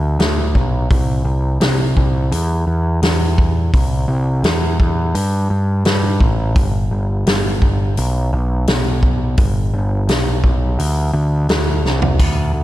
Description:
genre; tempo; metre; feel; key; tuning
blues rock power trio and southern rock; 85 BPM; 4/4; straight; G major; A4 = 440 Hz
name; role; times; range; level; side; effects
growling picked electric bass; bass; 0.0-12.6 s; G1 to G2; -16 LUFS; equal; overdrive
vintage drum kit; drums; 0.2-12.4 s; hi-hat, kick drum, snare drum, splash cymbal, toms; -17 LUFS; equal; none
room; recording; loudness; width
light reverb; none; -14 LUFS; side -15 dB against mid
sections
0.0-12.6 A section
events
drum fill 11.8-12.2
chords
none

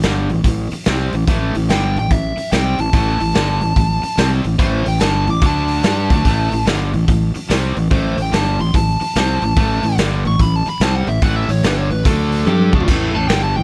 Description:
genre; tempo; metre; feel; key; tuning
blues rock power trio and southern rock; 145 BPM; 4/4; swing 64% on 8ths; unclear; A4 = 440 Hz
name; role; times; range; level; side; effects
crunchy overdriven guitar; riff; 0.0-13.6 s; G2 to G4; -23 LUFS; equal; none
fuzz fingered electric bass; bass; 0.0-13.6 s; G1 to G2; -22 LUFS; equal; overdrive
raw garage drum kit; drums; 0.0-13.4 s; crash cymbal, hi-hat, kick drum, snare drum, toms; -21 LUFS; equal; none
fuzz lead guitar; melody; 1.7-13.6 s; A4 to D6; -24 LUFS; equal; distortion
room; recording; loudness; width
little or no reverb; none; -16 LUFS; mono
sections
0.0-12.9 A section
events
drum fill 12.5-12.9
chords
0.0 A5; 5.4 D5; 5.8 A5; 12.1 D5; 12.5 Dsus4; 12.9 A5

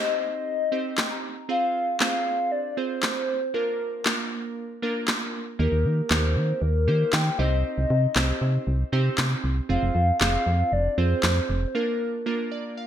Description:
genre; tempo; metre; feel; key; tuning
dance-pop; 117 BPM; 4/4; straight; unclear; A4 = 441 Hz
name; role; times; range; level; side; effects
hollow clarinet-like synth lead; melody; 0.0-12.3 s; Bb4 to G5; -27 LUFS; left 2 dB; chorus, digital delay
glassy digital keys; accompaniment; 0.0-12.9 s; Bb3 to Bb5; -30 LUFS; right 3 dB; chorus
electronic handclaps and snare drum; drums; 1.0-11.4 s; none; -26 LUFS; equal; gated reverb
solid FM bass; bass; 5.6-11.7 s; F1 to Eb3; -23 LUFS; equal; none
room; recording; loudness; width
light reverb, digital ambience; bright 1980s-style digital production; -22 LUFS; side -10 dB against mid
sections
0.0-12.9 A section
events
synth keys fill 0.7-1.5, 12.3-12.9; break 11.7-12.9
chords
0.0 Cm; 1.5 Fm; 3.5 Bb; 5.6 Eb; 7.4 Cm; 9.7 Fm; 11.7 Bb

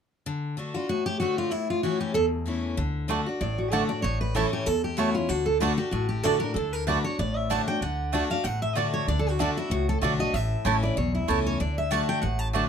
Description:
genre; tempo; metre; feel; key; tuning
bluegrass; 190 BPM; 4/4; swing 56% on 8ths; D major; A4 = 438 Hz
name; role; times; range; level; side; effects
picked steel-string acoustic guitar; accompaniment; 0.3-12.7 s; E2 to F#4; -28 LUFS; left 3 dB; none
picked steel-string acoustic guitar; melody; 0.7-12.5 s; D4 to A5; -28 LUFS; right 1 dB; none
upright bass; bass; 2.8-12.6 s; A1 to E2; -30 LUFS; equal; none
mandolin; stabs; 3.1-12.6 s; A3 to A5; -28 LUFS; right 8 dB; none
room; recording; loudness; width
light reverb; close, detailed microphones; -24 LUFS; side -7 dB against mid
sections
0.3-2.8 A section; 2.8-12.7 B section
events
none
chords
0.3 D; 1.5 A; 2.8 D; 4.0 A; 5.3 D; 10.3 A; 11.6 D

